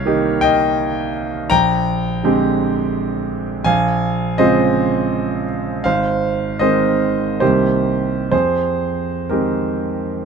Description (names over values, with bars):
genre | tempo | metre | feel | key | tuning
classical, impressionist solo piano | 61-85 BPM | 3/4 | rubato | F minor | A4 = 440 Hz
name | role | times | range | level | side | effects
clear grand piano | solo | 0.0-10.2 s | Ab1 to Bb5 | -15 LUFS | right 1 dB | none
room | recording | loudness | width
light reverb | close, detailed microphones | -15 LUFS | side -6 dB against mid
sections
0.0-10.2 A section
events
none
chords
0.0 Cm7; 1.5 Bb13; 3.7 Dbmaj9/Bb; 5.9 Ab69; 7.4 Cm7; 8.3 Fm11